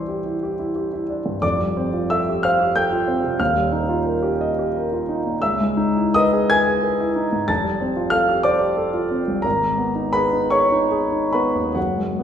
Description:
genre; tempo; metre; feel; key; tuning
classical, impressionist solo piano; 47-63 BPM (dotted quarters); 6/8; rubato; unclear; A4 = 440 Hz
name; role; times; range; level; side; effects
warm concert grand piano; solo; 0.0-12.2 s; Eb1 to A6; -18 LUFS; equal; none
room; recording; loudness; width
wet recital hall reverb, RT60 1.4 s; heard from further back in the room; -18 LUFS; side -8 dB against mid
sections
0.0-12.2 A section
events
none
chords
0.0 Cadd9; 1.4 Fadd9; 3.4 Ebadd9; 5.4 C#m9; 7.5 F69; 9.5 G#madd9

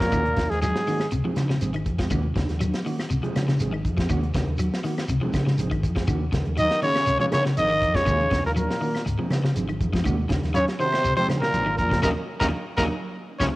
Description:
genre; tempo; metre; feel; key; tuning
afrobeat; 121 BPM; 4/4; straight; Eb dorian; A4 = 440 Hz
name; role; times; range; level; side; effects
growling trumpet; melody; 0.0-1.1, 6.6-13.5 s; Ab4 to Eb5; -24 LUFS; equal; cassette tape
breathy trombone; second line; 0.0-1.1, 6.6-13.5 s; Ab3 to Eb4; -34 LUFS; right 2 dB; none
mellow trombone section; second line; 0.0-1.1, 6.6-13.5 s; Ab2 to Eb3; -32 LUFS; left 1 dB; cassette tape
electric guitar at the edge of break-up; arpeggios; 0.0-13.5 s; Ab2 to Gb3; -29 LUFS; left 2 dB; spring reverb, cassette tape
mellow electric guitar; stabs; 0.0-13.5 s; F3 to Ab4; -34 LUFS; right 3 dB; cassette tape, tape echo
hollow-body short-scale fingered electric bass; bass; 0.0-13.5 s; Ab1 to Db3; -27 LUFS; equal; none
tight funk drum kit; drums; 0.0-13.5 s; hi-hat, kick drum, snare drum; -29 LUFS; equal; none
claves; percussion; 0.1-13.5 s; none; -41 LUFS; left 4 dB; none
congas; percussion; 0.1-13.5 s; none; -32 LUFS; right 2 dB; none
shekere; percussion; 0.1-13.5 s; none; -32 LUFS; right 1 dB; none
room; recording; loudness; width
light reverb, small room ambience; home recording on cassette; -21 LUFS; side -19 dB against mid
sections
0.0-13.6 A section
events
band accent 12.0-13.6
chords
0.1 Ebm7; 1.1 Dbmaj7; 2.1 Ebm7; 3.1 Dbmaj7; 4.1 Ebm7; 5.1 Dbmaj7; 6.1 Ebm7; 7.1 Dbmaj7; 8.1 Ebm7; 9.1 Dbmaj7; 10.1 Ebm7; 11.0 Dbmaj7; 12.0 Ebm7; 13.0 Dbmaj7

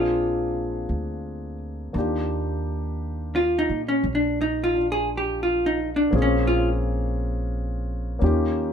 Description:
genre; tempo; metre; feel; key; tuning
jazz ballad; 57 BPM; 4/4; swing 67% on 8ths; Eb major; A4 = 440 Hz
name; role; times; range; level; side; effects
vintage hollow-body jazz guitar; melody; 0.0-6.7 s; Db4 to Ab4; -22 LUFS; equal; none
warm grand piano; accompaniment; 0.0-8.7 s; Bb3 to Ab4; -29 LUFS; left 3 dB; none
upright bass; bass; 0.0-8.7 s; Bb1 to Bb2; -27 LUFS; right 1 dB; none
room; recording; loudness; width
light reverb; minimal, uncompressed stereo recording; -22 LUFS; side -8 dB against mid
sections
0.0-1.9 A section; 1.9-8.7 B section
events
hollow-body jazz guitar solo 1.9-8.7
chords
0.0 Bb7; 1.9 Ebmaj9; 6.1 Bbm9; 8.2 Eb7

